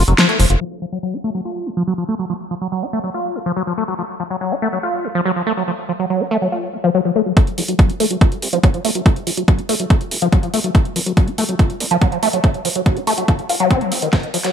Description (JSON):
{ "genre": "psychedelic trance", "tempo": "142 BPM", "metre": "4/4", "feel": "straight", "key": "unclear", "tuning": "A4 = 444 Hz", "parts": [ { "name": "liquid acid bass", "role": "riff", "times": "0.0-14.5 s", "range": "Eb3 to F4", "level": "-19 LUFS", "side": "moving between left 5 dB and right 5 dB", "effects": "phaser, auto-pan, sidechain pumping, tape echo" }, { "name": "fat analog bass", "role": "bass", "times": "0.0-0.6, 7.6-14.5 s", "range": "Eb1 to C2", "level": "-22 LUFS", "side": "equal", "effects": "high-pass filter" }, { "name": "big-room dance drum kit", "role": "drums", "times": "0.1-0.7, 7.4-14.5 s", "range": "crash cymbal, hi-hat, snare drum", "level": "-20 LUFS", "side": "equal", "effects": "overdrive, high-pass filter on snare, high-pass filter on hats, high-pass filter on cymbals" }, { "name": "electronic kick drum", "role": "drums", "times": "7.4-14.2 s", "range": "none", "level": "-13 LUFS", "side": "equal", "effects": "none" } ], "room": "light reverb, digital ambience", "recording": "high-pass filter, low-pass filter", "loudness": "-16 LUFS", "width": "side -8 dB against mid", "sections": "0.6-7.4 A section; 7.4-14.5 B section", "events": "kick drops out 0.2-0.6; band accent 0.2; filter sweep on acid bass 0.6-7.4, 7.4-14.5; build-up 7.4-14.5; drum fill 14.1-14.5", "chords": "0.0 F5", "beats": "0.18 | 0.61 1.03 1.45 1.87 | 2.30 2.72 3.14 3.56 | 3.99 4.41 4.83 5.25 | 5.68 6.10 6.52 6.95 | 7.37 7.79 8.21 8.63 | 9.06 9.48 9.90 10.32 | 10.75 11.17 11.59 12.02 | 12.44 12.86 13.28 13.71 | 14.13" }